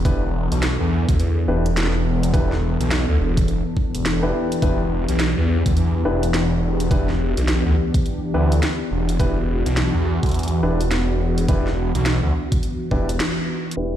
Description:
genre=glitch hop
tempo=105 BPM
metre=4/4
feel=swing 62% on 16ths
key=E minor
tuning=A4 = 443 Hz
part: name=warm analog pad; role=sustained chords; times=0.0-14.0 s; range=E3 to A4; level=-24 LUFS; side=left 1 dB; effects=chorus, sidechain pumping
part: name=dark concert grand piano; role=stabs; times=0.0-14.0 s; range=D4 to B4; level=-27 LUFS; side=equal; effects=vintage 12-bit sampler grit, sidechain pumping, tape echo
part: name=phased detuned saw bass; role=bass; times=0.0-14.0 s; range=E1 to E2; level=-20 LUFS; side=equal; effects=phaser, overdrive
part: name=drum and bass drum kit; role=drums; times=0.1-13.9 s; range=crash cymbal, hi-hat, rim click, snare drum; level=-28 LUFS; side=equal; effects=overdrive
part: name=electronic kick drum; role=drums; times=0.1-13.1 s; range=none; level=-20 LUFS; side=equal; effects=overdrive
room=light reverb, digital ambience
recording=played on a big sound system in a bare room, large studio reverb, low-pass filter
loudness=-18 LUFS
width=side -11 dB against mid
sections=0.0-13.8 A section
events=band accent 13.2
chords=0.0 Em7

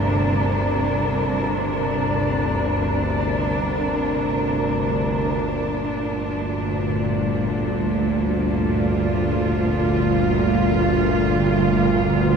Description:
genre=dark ambient drone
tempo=free time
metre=none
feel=none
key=G minor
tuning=A4 = 440 Hz
part: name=warm studio cello section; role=sustained chords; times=0.0-12.4 s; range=G2 to F4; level=-22 LUFS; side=equal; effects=none
part: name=dark detuned synth bell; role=arpeggios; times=0.0-5.5 s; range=none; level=barely audible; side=none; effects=none
part: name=bowed-like drone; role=drone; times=0.0-12.4 s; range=G1 to D2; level=-22 LUFS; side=equal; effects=built-in reverb
part: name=wind-like tuned noise texture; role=texture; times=0.0-12.4 s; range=Bb4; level=-29 LUFS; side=right 1 dB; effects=built-in reverb
room=wet huge ambient reverb, RT60 8.5 s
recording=none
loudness=-19 LUFS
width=side -6 dB against mid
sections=0.0-5.5 A section; 5.5-12.4 B section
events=fade-in on synth texture 5.5-12.4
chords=0.0 Gm7

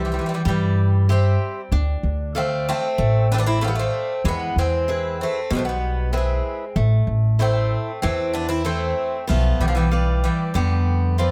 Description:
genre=greek folk, Greek bouzouki band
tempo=95 BPM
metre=4/4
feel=straight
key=A minor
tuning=A4 = 440 Hz
part: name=Greek bouzouki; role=melody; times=0.0-11.3 s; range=F3 to E4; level=-28 LUFS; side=equal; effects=slapback echo
part: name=Greek bouzouki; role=second line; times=0.0-11.3 s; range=D3 to C4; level=-31 LUFS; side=equal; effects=none
part: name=picked swing-style acoustic guitar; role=accompaniment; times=0.0-11.3 s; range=B2 to F5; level=-31 LUFS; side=equal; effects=none
part: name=upright bass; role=bass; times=0.0-11.3 s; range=A1 to G2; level=-23 LUFS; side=equal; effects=none
room=little or no reverb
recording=close, detailed microphones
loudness=-21 LUFS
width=mono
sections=0.0-11.3 A section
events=none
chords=0.0 C; 1.7 Dm; 4.2 E; 6.8 Am; 9.3 Bdim

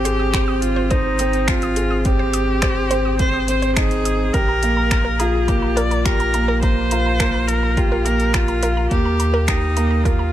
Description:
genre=piano and strings electronica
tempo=105 BPM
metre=4/4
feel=straight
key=unclear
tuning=A4 = 440 Hz
part: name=rich viola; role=melody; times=0.0-10.3 s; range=Eb4 to D5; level=-22 LUFS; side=left 1 dB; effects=none
part: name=wide unison pluck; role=arpeggios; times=0.0-10.3 s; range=Bb4 to Eb6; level=-29 LUFS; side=right 2 dB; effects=sidechain pumping, tape echo
part: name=dark concert grand piano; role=riff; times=0.0-10.3 s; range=Bb3 to C5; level=-22 LUFS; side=right 1 dB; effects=none
part: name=warm sub bass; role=bass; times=0.0-10.3 s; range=Ab1 to Eb2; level=-22 LUFS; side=equal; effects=sidechain pumping
part: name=deep house drum kit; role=drums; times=0.1-10.2 s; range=finger snaps, hi-hat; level=-26 LUFS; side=equal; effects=overdrive
part: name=electronic kick drum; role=drums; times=0.3-10.2 s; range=none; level=-20 LUFS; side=equal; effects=overdrive
room=digital ambience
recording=lossy compression artefacts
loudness=-16 LUFS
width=side -12 dB against mid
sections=0.0-10.3 A section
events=none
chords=0.0 Ab; 4.3 Bb5; 8.9 Eb

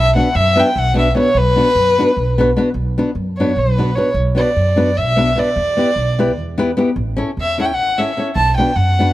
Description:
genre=balkan folk, Balkan wedding band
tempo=299 BPM (eighths)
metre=7/8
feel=straight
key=B minor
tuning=A4 = 440 Hz
part: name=dark violin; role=melody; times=0.0-9.1 s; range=B4 to A5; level=-16 LUFS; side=equal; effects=none
part: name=upright bass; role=bass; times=0.0-9.1 s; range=A1 to F#2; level=-18 LUFS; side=right 1 dB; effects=none
part: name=flamenco guitar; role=accompaniment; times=0.1-9.1 s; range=B3 to C#5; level=-18 LUFS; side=left 2 dB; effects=none
room=light reverb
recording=none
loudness=-13 LUFS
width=side -15 dB against mid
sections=0.0-2.8 A section; 2.8-9.1 B section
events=violin solo 2.8-9.1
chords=0.0 Bm; 5.6 Em; 7.0 A; 8.4 Bm

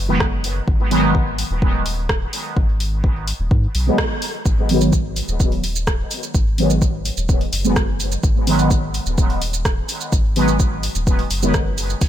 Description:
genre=dub techno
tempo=127 BPM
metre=4/4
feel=straight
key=G# minor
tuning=A4 = 440 Hz
part: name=soft dub sub bass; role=bass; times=0.0-12.1 s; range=D#1 to G#2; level=-22 LUFS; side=equal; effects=sidechain pumping
part: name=resonant sweep polysynth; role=stabs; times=0.1-11.6 s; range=D#3 to B3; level=-21 LUFS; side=right 1 dB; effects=chorus, phaser, cassette tape, sidechain pumping, dub echo
part: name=deep house drum kit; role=drums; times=0.2-12.1 s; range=hi-hat, ride cymbal, rim click, shaker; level=-25 LUFS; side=right 1 dB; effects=none
part: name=electronic kick drum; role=drums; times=0.2-12.1 s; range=none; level=-18 LUFS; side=equal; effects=none
room=light reverb, digital ambience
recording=none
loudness=-16 LUFS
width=side -11 dB against mid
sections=0.0-4.5 A section; 4.5-12.1 A section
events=band accent 4.0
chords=0.0 G#m7

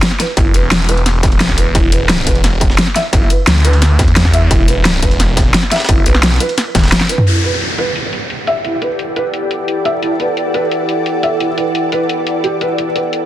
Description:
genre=dark technical drum and bass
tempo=174 BPM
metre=4/4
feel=straight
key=E minor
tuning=A4 = 440 Hz
part: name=breakbeat sampler-style drum kit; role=drums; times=0.0-7.0 s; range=ride cymbal, snare drum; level=-25 LUFS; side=right 2 dB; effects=none
part: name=dubstep drum kit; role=drums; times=0.0-13.2 s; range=hi-hat, snare drum, toms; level=-15 LUFS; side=equal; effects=low-pass filter on snare, low-pass filter on hats, low-pass filter on toms
part: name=felt-muted upright piano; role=arpeggios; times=0.2-13.0 s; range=E4 to E5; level=-20 LUFS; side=right 1 dB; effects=sidechain pumping, low-pass filter, digital delay
part: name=snarling distorted saw bass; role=bass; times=0.4-6.9 s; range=E1 to E2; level=-13 LUFS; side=equal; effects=distortion, tube saturation
part: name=electronic kick drum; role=drums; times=0.4-6.8 s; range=none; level=-14 LUFS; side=equal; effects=distortion
part: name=dark analog pad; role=sustained chords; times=7.3-13.3 s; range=E4 to G5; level=-21 LUFS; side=equal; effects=chorus, sidechain pumping
part: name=downlifter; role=sound effects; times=7.3-10.0 s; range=none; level=-21 LUFS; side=equal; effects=none
part: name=ethereal airy pad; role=texture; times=8.2-13.3 s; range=E4 to D5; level=-19 LUFS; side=equal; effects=ensemble chorus, built-in reverb, phaser, sidechain pumping
room=light reverb, digital ambience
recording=dense, heavily limited modern master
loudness=-11 LUFS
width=side -13 dB against mid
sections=0.0-7.3 A section; 7.3-13.3 B section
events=drum fill 6.7-7.3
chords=0.0 E5; 7.3 Emadd9

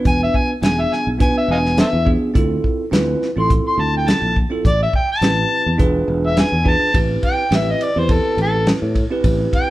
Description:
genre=straight-eighth soul blues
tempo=104 BPM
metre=4/4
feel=swing 55% on 16ths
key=A minor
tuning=A4 = 441 Hz
part: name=bell-like tine electric piano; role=accompaniment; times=0.0-9.7 s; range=B3 to B4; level=-21 LUFS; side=right 2 dB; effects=none
part: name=overdriven harmonica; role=melody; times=0.1-9.7 s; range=A4 to C6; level=-19 LUFS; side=left 1 dB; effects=none
part: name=sustaining fretless electric bass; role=bass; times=0.1-9.5 s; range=E1 to A2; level=-21 LUFS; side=equal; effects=none
part: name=warm soul drum kit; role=drums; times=0.1-9.7 s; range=hi-hat, kick drum, ride cymbal, snare drum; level=-18 LUFS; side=equal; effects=none
room=moderate large studio reverb, RT60 1.2 s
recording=band playing live in one room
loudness=-15 LUFS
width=side -16 dB against mid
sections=0.0-6.9 A section; 6.9-9.7 A section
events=harmonica solo 0.0-6.9, 6.9-9.7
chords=0.0 E7b9; 2.4 Dm7; 4.6 Am7; 5.8 E7b9; 6.9 Am7

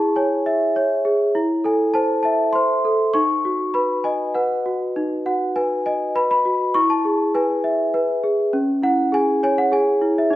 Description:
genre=children's music, lullaby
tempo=101 BPM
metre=3/4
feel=straight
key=unclear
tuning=A4 = 437 Hz
part: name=large celesta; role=solo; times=0.0-10.4 s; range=C#4 to C#6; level=-17 LUFS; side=equal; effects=none
room=moderate recital hall reverb, RT60 1.5 s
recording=recorded in a church or concert hall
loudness=-17 LUFS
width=side -15 dB against mid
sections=0.0-10.4 A section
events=none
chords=0.0 C#m/E; 1.4 Am; 3.1 B; 6.8 E; 8.5 C#m

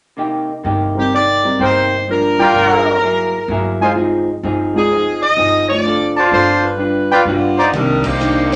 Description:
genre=jazz, big band swing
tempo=127 BPM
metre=4/4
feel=swing 67% on 8ths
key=C minor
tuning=A4 = 440 Hz
part: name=vintage hollow-body jazz guitar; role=accompaniment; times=0.2-8.5 s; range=G2 to B4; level=-22 LUFS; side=equal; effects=none
part: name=upright bass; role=bass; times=0.6-8.6 s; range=G1 to C2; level=-27 LUFS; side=equal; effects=none
part: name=mellow saxophone section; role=melody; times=1.0-8.6 s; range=G3 to Eb5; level=-18 LUFS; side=equal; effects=none
part: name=warm baby grand piano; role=accompaniment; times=1.0-8.0 s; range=Eb3 to D5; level=-22 LUFS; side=equal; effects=none
part: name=clear trumpet section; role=stabs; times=1.6-7.7 s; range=Eb4 to Bb5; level=-16 LUFS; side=equal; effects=none
part: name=swinging big-band drum kit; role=drums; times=7.7-8.6 s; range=crash cymbal, hi-hat, kick drum, ride cymbal, snare drum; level=-28 LUFS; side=equal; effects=none
room=wet studio reverb, RT60 0.6 s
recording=nothing above 10.6 kHz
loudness=-15 LUFS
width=mono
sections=0.2-7.7 A section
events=band accent 8.0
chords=0.2 Cm7; 2.1 Gm7; 3.0 F#9; 4.0 Fm7; 5.8 Dm7; 6.8 G7; 7.7 Cm9

